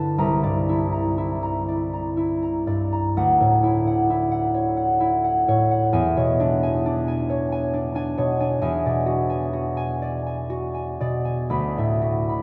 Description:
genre	classical, solo harp piece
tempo	38-45 BPM (dotted quarters)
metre	6/8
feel	rubato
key	unclear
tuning	A4 = 439 Hz
part	concert harp	solo	0.0-12.4 s	C2 to B5	-22 LUFS	equal	none
room	wet cathedral reverb, RT60 5.9 s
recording	in a vast, echoing space, nothing above 10.3 kHz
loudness	-23 LUFS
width	mono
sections	0.0-12.4 A section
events	none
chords	0.2 C9; 3.2 Dmaj9; 5.9 E13; 8.6 E9; 11.5 D69

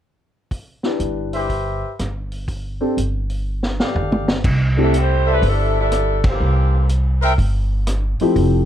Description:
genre	jazz, big band swing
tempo	122 BPM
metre	4/4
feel	swing 67% on 8ths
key	C major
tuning	A4 = 440 Hz
part	vintage drum kit	drums	0.5-8.5 s	crash cymbal, hi-hat, kick drum, ride cymbal, rim click, snare drum, toms	-22 LUFS	equal	none
part	warm grand piano	accompaniment	0.8-4.9, 8.2-8.7 s	F3 to B4	-19 LUFS	left 2 dB	none
part	upright bass	bass	1.0-8.7 s	F1 to C2	-19 LUFS	equal	none
part	warm trumpet section	stabs	1.3-7.3 s	G4 to G5	-22 LUFS	left 1 dB	none
part	warm saxophone section	melody	4.8-6.9 s	E3 to C5	-20 LUFS	equal	none
room	light reverb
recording	dark, warm production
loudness	-17 LUFS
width	side -10 dB against mid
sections	0.5-4.4 A section; 4.4-8.7 B section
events	drum fill 3.5-4.4; band accent 6.2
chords	0.5 Cmaj7; 2.5 F69; 4.4 C69; 6.4 C7

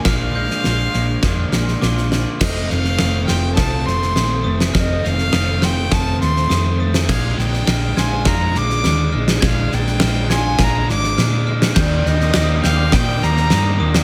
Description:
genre	post-rock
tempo	103 BPM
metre	4/4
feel	straight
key	unclear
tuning	A4 = 441 Hz
part	warm violin	melody	0.0-13.8 s	D5 to D6	-25 LUFS	equal	slapback echo
part	glockenspiel with hard plastic mallets	arpeggios	0.0-14.0 s	D6 to Ab6	-34 LUFS	equal	slapback echo
part	semi-hollow electric guitar	arpeggios	0.0-14.0 s	F2 to G4	-30 LUFS	equal	lush chorus, slapback echo
part	distorted electric guitar	riff	0.0-2.4, 11.8-14.0 s	Bb2 to D4	-27 LUFS	equal	distortion
part	hollow-body short-scale fingered electric bass	bass	0.1-14.0 s	F1 to Bb2	-22 LUFS	equal	none
part	huge arena drum kit	drums	0.1-14.0 s	crash cymbal, kick drum, snare drum	-22 LUFS	equal	none
part	raw garage guitar	riff	2.4-14.0 s	Ab3 to D4	-27 LUFS	equal	overdrive
room	light reverb, small room ambience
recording	none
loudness	-17 LUFS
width	mono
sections	0.0-2.4 A section; 2.4-14.0 B section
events	build-up 2.4-14.0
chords	0.0 Bb7; 2.4 F7; 7.1 Bb7; 11.8 Ebmaj7

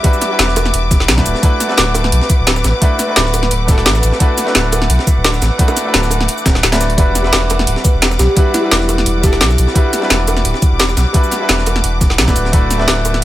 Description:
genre	liquid drum and bass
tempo	173 BPM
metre	4/4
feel	straight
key	E minor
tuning	A4 = 440 Hz
part	bright concert grand piano	accompaniment	0.0-13.2 s	G3 to B4	-19 LUFS	equal	dub echo
part	dark studio string section	sustained chords	0.0-13.2 s	G3 to D6	-22 LUFS	equal	none
part	breakbeat sampler-style drum kit	drums	0.0-13.1 s	hi-hat, snare drum	-21 LUFS	equal	high-pass filter on hats, high-pass filter on snare
part	electronic kick drum	drums	0.0-12.6 s	none	-12 LUFS	equal	overdrive
part	garage drum kit	drums	0.0-13.2 s	cabasa, hi-hat, snare drum	-16 LUFS	equal	overdrive
part	saturated sub bass	bass	0.4-13.2 s	D1 to B1	-16 LUFS	equal	none
part	bongos	percussion	0.6-13.1 s	none	-24 LUFS	right 4 dB	none
part	kalimba	melody	7.8-9.8 s	E4 to B4	-21 LUFS	equal	dub echo
room	light reverb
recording	none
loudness	-11 LUFS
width	side -14 dB against mid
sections	0.0-13.2 A section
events	none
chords	0.0 Em9; 1.3 D6; 7.0 Em9; 12.4 D6

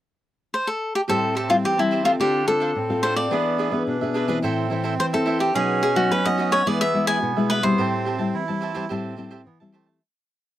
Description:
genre	samba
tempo	108 BPM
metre	4/4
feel	straight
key	A minor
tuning	A4 = 440 Hz
part	cavaquinho	melody	0.5-9.4 s	E4 to G#5	-22 LUFS	left 1 dB	none
part	melodica	second line	1.1-10.0 s	A3 to E4	-28 LUFS	right 6 dB	none
part	cavaquinho	accompaniment	1.1-10.0 s	D4 to A5	-29 LUFS	right 5 dB	none
part	nylon-string guitar	accompaniment	1.1-10.0 s	A2 to A4	-24 LUFS	left 3 dB	none
room	light reverb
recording	dry, close 1970s-style studio recording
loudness	-20 LUFS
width	side -13 dB against mid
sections	0.0-1.1 pickup bar; 1.1-10.0 A section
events	fade-out 7.8-10.0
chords	0.0 N.C.; 1.1 Am7; 2.2 Dm7; 3.3 E7; 4.4 Am; 5.5 B; 6.7 E; 7.8 Am7

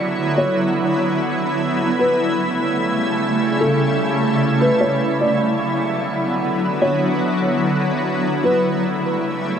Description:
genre	hip hop, atmospheric cloud-rap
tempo	free time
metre	none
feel	none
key	D major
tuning	A4 = 440 Hz
part	shimmering ambient pad	sustained chords	0.0-9.6 s	C#3 to E4	-18 LUFS	equal	chorus, built-in reverb
part	felt-muted upright piano	melody	0.4-8.6 s	A4 to D5	-23 LUFS	equal	low-pass filter, digital delay
room	wet shimmer reverb, RT60 3.7 s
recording	none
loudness	-16 LUFS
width	side -8 dB against mid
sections	0.0-9.6 A section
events	none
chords	0.0 D69; 1.8 A7; 5.0 D69; 8.2 A7

